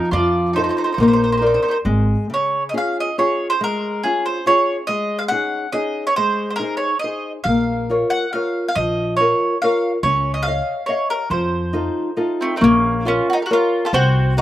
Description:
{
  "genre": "italian folk, Italian serenade",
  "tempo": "139 BPM",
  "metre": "3/4",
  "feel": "rubato",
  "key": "Db major",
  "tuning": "A4 = 440 Hz",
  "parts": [
    { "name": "mandolin", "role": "melody", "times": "0.0-14.4 s", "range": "A3 to Gb5", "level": "-20 LUFS", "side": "right 1 dB", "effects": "none" },
    { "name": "mandolin", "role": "second line", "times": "0.0-1.8, 12.4-14.4 s", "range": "C4 to C5", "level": "-23 LUFS", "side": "right 2 dB", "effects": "slapback echo" },
    { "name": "nylon-string guitar", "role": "accompaniment", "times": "0.0-14.4 s", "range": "Db3 to F5", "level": "-20 LUFS", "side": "left 1 dB", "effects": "none" },
    { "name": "upright bass", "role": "bass", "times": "0.1-2.1, 7.5-14.4 s", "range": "Ab1 to F2", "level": "-21 LUFS", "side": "equal", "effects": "none" }
  ],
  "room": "little or no reverb",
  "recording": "recorded outdoors, with no room sound",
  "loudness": "-16 LUFS",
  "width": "side -13 dB against mid",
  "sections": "0.0-2.3 A section; 2.3-12.6 B section; 12.6-14.4 C section",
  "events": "none",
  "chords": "0.1 F7; 1.0 Bbadd9; 1.9 N.C.; 2.3 Db; 4.9 Absus4; 6.2 Ab; 7.5 Bbm; 10.0 Dbadd9; 11.3 F7; 12.6 Bbm"
}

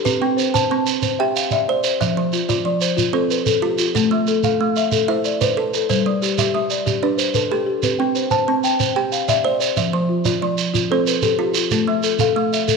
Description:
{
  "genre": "southern african traditional, mbira-style interlocking cycle",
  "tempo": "124 BPM (dotted quarters)",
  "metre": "12/8",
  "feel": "straight",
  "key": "unclear",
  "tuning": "A4 = 440 Hz",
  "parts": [
    { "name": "folk marimba with soft mallets", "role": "arpeggios", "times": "0.0-12.8 s", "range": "F3 to A5", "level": "-20 LUFS", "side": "left 8 dB", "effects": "none" },
    { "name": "kalimba", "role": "arpeggios", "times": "0.0-12.7 s", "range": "F3 to A5", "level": "-22 LUFS", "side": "right 10 dB", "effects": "none" },
    { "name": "shekere", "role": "percussion", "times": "0.1-12.8 s", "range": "none", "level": "-23 LUFS", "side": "right 8 dB", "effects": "none" }
  ],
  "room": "moderate echo chamber reverb, RT60 1.7 s, studio reverb",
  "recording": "1960s-style stereo with parts hard left and right",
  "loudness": "-16 LUFS",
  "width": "side -4 dB against mid",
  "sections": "0.0-12.8 A section",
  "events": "none",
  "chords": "0.0 C; 2.0 F; 3.9 Am; 5.9 G; 7.8 C; 9.8 F; 11.7 A5"
}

